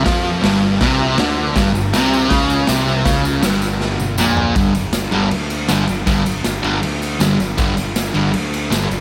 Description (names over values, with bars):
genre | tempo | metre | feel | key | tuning
garage rock duo or trio | 159 BPM | 4/4 | straight | unclear | A4 = 441 Hz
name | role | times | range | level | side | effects
fuzz guitar | riff | 0.0-8.9 s | G2 to G3 | -19 LUFS | equal | distortion
fuzz fingered electric bass | bass | 0.0-9.0 s | G1 to F2 | -25 LUFS | equal | overdrive
raw garage drum kit | drums | 0.1-9.0 s | hi-hat, kick drum, ride cymbal, snare drum, toms | -22 LUFS | equal | none
tambourine | percussion | 1.6-9.0 s | none | -34 LUFS | equal | none
room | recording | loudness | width
small room ambience | none | -17 LUFS | mono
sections
0.0-4.6 A section; 4.6-9.0 B section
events
drum fill 3.8-4.6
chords
0.0 G5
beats
| 0.06 0.43 0.81 1.18 | 1.56 1.93 2.31 2.68 | 3.06 3.43 3.81 4.18 | 4.56 4.94 5.32 5.70 | 6.07 6.45 6.83 7.21 | 7.59 7.97 8.34 8.72